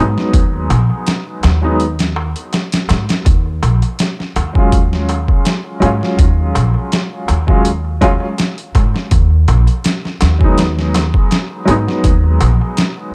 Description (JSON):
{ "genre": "trip hop", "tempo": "82 BPM", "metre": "4/4", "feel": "swing 54% on 16ths", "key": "unclear", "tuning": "A4 = 442 Hz", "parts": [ { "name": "felt-muted upright piano", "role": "accompaniment", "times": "0.0-13.1 s", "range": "Gb3 to F4", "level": "-20 LUFS", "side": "equal", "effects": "tremolo, tape echo" }, { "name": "upright bass", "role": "bass", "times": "0.0-12.6 s", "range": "Bb1 to Ab2", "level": "-16 LUFS", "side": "equal", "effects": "none" }, { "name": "boom bap sampler-style drum kit", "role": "drums", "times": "0.2-13.0 s", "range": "hi-hat, kick drum, snare drum", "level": "-17 LUFS", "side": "equal", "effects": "overdrive, studio reverb" }, { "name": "darbuka", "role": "percussion", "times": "0.2-13.1 s", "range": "none", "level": "-29 LUFS", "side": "equal", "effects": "none" } ], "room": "small room ambience", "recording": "dark, warm production", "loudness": "-14 LUFS", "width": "mono", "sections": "0.0-13.1 A section", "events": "none", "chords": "0.0 Abm7; 3.3 Ebm11; 9.1 Abm7" }